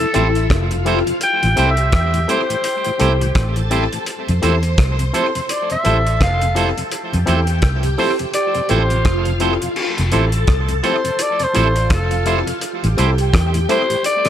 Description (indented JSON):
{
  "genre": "lovers rock reggae",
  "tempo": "84 BPM",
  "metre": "4/4",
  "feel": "swing 59% on 16ths",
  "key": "F major",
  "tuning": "A4 = 441 Hz",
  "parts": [
    { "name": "growling alto saxophone", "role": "melody", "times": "0.0-14.3 s", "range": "A4 to G5", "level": "-20 LUFS", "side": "left 1 dB", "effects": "tape echo" },
    { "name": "phased string machine", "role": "second line", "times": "0.0-14.3 s", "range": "E4 to C6", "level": "-24 LUFS", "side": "equal", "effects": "ensemble chorus, phaser, tape echo" },
    { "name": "mellow tonewheel organ", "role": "accompaniment", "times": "0.0-14.3 s", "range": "F2 to E4", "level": "-27 LUFS", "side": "left 4 dB", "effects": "slow rotary speaker, tape echo" },
    { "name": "barky tine electric piano", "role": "accompaniment", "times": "0.1-13.8 s", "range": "C4 to A4", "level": "-26 LUFS", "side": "left 2 dB", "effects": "overdrive, auto-pan" },
    { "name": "clean electric guitar", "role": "stabs", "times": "0.1-13.8 s", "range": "A3 to C5", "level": "-24 LUFS", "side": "right 8 dB", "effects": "tape echo" },
    { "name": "cloth-damped thuddy drum kit", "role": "drums", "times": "0.1-14.3 s", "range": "crash cymbal, hi-hat, kick drum, rim click", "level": "-21 LUFS", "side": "equal", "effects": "tape echo" },
    { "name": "vintage muted fingered electric bass", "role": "bass", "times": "0.2-13.7 s", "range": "F1 to F2", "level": "-18 LUFS", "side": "equal", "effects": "none" }
  ],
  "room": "light reverb",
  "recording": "none",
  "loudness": "-15 LUFS",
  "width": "side -10 dB against mid",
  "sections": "0.0-9.8 A section; 9.8-14.3 A section",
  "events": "none",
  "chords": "0.0 Fmaj7; 1.2 Am7; 4.1 Fmaj7; 12.6 Am7",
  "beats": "0.50 | 1.22 1.93 2.64 3.35 | 4.07 4.78 5.49 6.20 | 6.92 7.63 8.34 9.05 | 9.77 10.48 11.19 11.91 | 12.62 13.33 14.05"
}